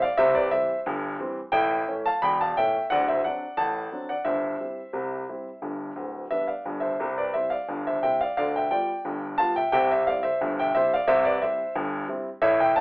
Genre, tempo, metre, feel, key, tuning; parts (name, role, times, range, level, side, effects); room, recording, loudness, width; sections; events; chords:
ragtime piano; 88 BPM; 2/4; straight; C major; A4 = 440 Hz
warm grand piano; solo; 0.0-12.8 s; D1 to B5; -23 LUFS; equal
moderate studio reverb, RT60 0.6 s; band playing live in one room, telephone sound; -23 LUFS; side -23 dB against mid
0.0-12.8 A section
0.0 C; 1.5 A7; 2.9 D7; 4.3 C/G; 5.6 G; 7.0 C; 8.4 G7/D; 9.7 C